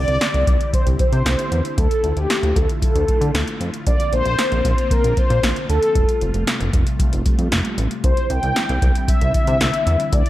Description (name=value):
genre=synth-pop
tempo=115 BPM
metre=4/4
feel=straight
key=unclear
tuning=A4 = 440 Hz
part: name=mellow synth brass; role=melody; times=0.0-10.3 s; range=G4 to G5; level=-21 LUFS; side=left 1 dB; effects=chorus, slapback echo
part: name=string machine, cellos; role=sustained chords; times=0.0-10.3 s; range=C3 to G4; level=-28 LUFS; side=equal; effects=phaser, ensemble chorus
part: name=chorused synth bass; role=bass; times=0.0-10.2 s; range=F1 to D3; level=-20 LUFS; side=equal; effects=none
part: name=electro analog drum machine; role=drums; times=0.1-10.3 s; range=hi-hat, kick drum, snare drum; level=-19 LUFS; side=equal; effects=gated reverb
room=little or no reverb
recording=none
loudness=-16 LUFS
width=side -15 dB against mid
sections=0.0-10.3 A section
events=none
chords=0.0 Cadd9; 1.8 Dmadd9; 3.9 Bbadd9; 6.0 Fadd9; 8.0 Cadd9